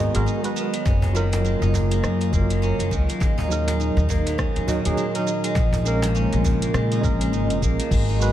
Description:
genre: organic downtempo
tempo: 102 BPM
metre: 4/4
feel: swing 59% on 16ths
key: unclear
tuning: A4 = 435 Hz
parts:
  - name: tine electric piano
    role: accompaniment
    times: 0.0-8.3 s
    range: F#3 to D#5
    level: -28 LUFS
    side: right 3 dB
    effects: medium tremolo, sidechain pumping, tape echo
  - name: airy breathy pad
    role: sustained chords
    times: 0.0-8.3 s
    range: A#2 to F#4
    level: -29 LUFS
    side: left 1 dB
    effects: chorus, sidechain pumping
  - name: steel-string zither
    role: arpeggios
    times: 0.0-8.3 s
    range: D#3 to G#4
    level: -27 LUFS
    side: right 1 dB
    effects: tape echo
  - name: upright bass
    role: bass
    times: 0.0-8.3 s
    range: E#1 to A#2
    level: -22 LUFS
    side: equal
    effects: none
  - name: afro-pop drum kit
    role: drums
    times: 0.1-8.3 s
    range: crash cymbal, hi-hat, rim click, shaker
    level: -33 LUFS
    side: right 3 dB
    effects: none
  - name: electronic kick drum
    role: drums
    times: 0.9-8.1 s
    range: none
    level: -23 LUFS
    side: equal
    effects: none
  - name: cajon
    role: percussion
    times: 0.9-6.6 s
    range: none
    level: -30 LUFS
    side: equal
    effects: none
room: light reverb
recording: dark, warm production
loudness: -19 LUFS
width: side -12 dB against mid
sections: 0.0-7.9 A section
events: none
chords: 0.0 G#m7; 0.9 F#maj7; 3.2 D#m; 5.6 A#m7

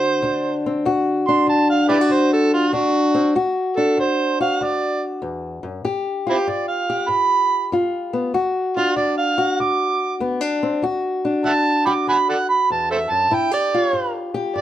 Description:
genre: acoustic country blues, solo or duo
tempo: 96 BPM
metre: 4/4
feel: swing 67% on 8ths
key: D mixolydian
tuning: A4 = 442 Hz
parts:
  - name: overdriven harmonica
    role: melody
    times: 0.0-14.6 s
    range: C4 to D6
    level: -19 LUFS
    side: right 3 dB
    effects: plate reverb
  - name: fingerpicked old ladder-braced acoustic guitar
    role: accompaniment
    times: 0.0-14.6 s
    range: D2 to G4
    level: -20 LUFS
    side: left 2 dB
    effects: none
room: moderate studio reverb, RT60 0.5 s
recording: none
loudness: -17 LUFS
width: side -12 dB against mid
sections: 0.0-3.4 A section; 3.4-14.6 A section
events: harmonica solo 0.0-3.4, 3.4-14.6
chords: 0.0 D7; 3.4 D; 5.8 G7; 8.3 D; 13.3 G7(no3)

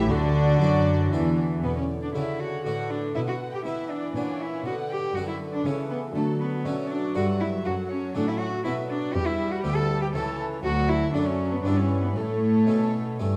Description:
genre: classical, baroque-style concerto movement with solo episodes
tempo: 120 BPM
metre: 3/4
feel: straight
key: B minor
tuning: A4 = 440 Hz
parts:
  - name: rich cello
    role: melody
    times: 0.0-13.2 s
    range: D3 to A4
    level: -30 LUFS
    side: equal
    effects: none
  - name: warm studio violin section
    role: melody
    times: 0.0-13.4 s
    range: A4 to D5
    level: -40 LUFS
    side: equal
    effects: none
  - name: rich chamber violin section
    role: second line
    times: 0.0-13.2 s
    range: D4 to A5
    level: -38 LUFS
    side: equal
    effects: none
  - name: dark chamber viola section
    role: accompaniment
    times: 0.0-13.4 s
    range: D3 to F#4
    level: -35 LUFS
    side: equal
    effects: none
  - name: harpsichord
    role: accompaniment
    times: 0.0-13.4 s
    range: C#2 to F#4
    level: -34 LUFS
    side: equal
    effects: none
  - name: dark chamber cello section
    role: bass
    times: 0.0-13.4 s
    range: C#2 to B3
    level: -32 LUFS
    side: equal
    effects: none
  - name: dark studio double bass section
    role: bass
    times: 0.0-1.6 s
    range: D2 to F#2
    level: -29 LUFS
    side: equal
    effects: none
room: wet recital hall reverb, RT60 1.4 s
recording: dark, warm production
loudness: -26 LUFS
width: mono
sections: 0.0-1.6 A section; 1.6-13.4 B section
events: none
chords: 0.1 D; 1.6 Bm; 3.1 E5/B; 4.2 F#7/A#; 4.7 Bm; 5.7 A/C#; 6.1 D; 7.7 F#m; 8.6 Bm; 9.1 Em; 10.1 A/C#; 10.6 D; 11.6 Em/G; 12.2 A

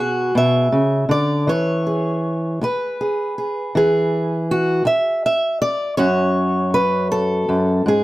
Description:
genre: folk, solo fingerstyle acoustic guitar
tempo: 53 BPM (dotted quarters)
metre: 6/8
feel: rubato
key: unclear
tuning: A4 = 438 Hz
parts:
  - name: fingerpicked acoustic archtop guitar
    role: solo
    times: 0.0-8.0 s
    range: F#2 to E5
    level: -16 LUFS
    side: equal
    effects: none
room: light reverb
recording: none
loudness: -16 LUFS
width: side -17 dB against mid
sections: 0.0-8.0 A section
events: none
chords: 0.0 Bm; 6.0 F#madd9

